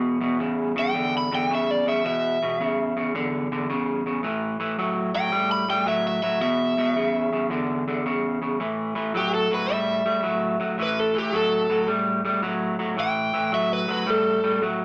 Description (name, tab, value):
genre	blues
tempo	110 BPM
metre	4/4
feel	swing 67% on 8ths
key	unclear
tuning	A4 = 440 Hz
part	electric guitar at the edge of break-up	riff	0.0-14.8 s	E2 to G3	-26 LUFS	equal	none
part	overdriven semi-hollow guitar	melody	0.8-14.6 s	G4 to B5	-26 LUFS	equal	none
room	wet studio reverb, RT60 0.6 s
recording	none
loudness	-24 LUFS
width	mono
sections	0.0-14.8 A section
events	none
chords	0.0 E5; 4.2 A5; 6.4 E5; 8.6 A5